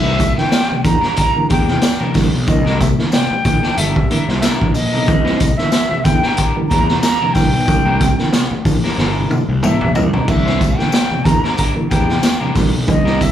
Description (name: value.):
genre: funk.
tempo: 92 BPM.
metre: 4/4.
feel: swing 56% on 16ths.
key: C mixolydian.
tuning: A4 = 441 Hz.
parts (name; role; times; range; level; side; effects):
jazz flute; melody; 0.0-13.3 s; Eb5 to Bb5; -20 LUFS; equal; plate reverb, slapback echo.
electric guitar at the edge of break-up; accompaniment; 0.0-13.2 s; G3 to C5; -24 LUFS; left 5 dB; plate reverb, slapback echo.
fuzz picked electric bass; bass; 0.0-13.3 s; G1 to E2; -18 LUFS; equal; overdrive.
congas; percussion; 0.0-13.3 s; none; -26 LUFS; right 4 dB; none.
mellow tonewheel organ; stabs; 0.2-13.3 s; C3 to Bb3; -21 LUFS; right 3 dB; chorus vibrato, slow rotary speaker, plate reverb, tape echo.
raw garage drum kit; drums; 0.2-13.3 s; crash cymbal, hi-hat, kick drum, snare drum, toms; -17 LUFS; equal; none.
tambourine; percussion; 0.2-13.3 s; none; -34 LUFS; left 8 dB; none.
room: moderate club reverb, RT60 0.5 s.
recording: live gig heard through the venue's PA, club reverb.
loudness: -13 LUFS.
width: side -10 dB against mid.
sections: 0.0-13.3 A section.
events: drum fill 9.0-10.3.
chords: 0.0 C9.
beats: 0.53 1.18 1.83 | 2.48 3.13 3.78 4.43 | 5.08 5.73 6.38 7.03 | 7.68 8.33 8.98 9.63 | 10.28 10.93 11.58 12.23 | 12.88.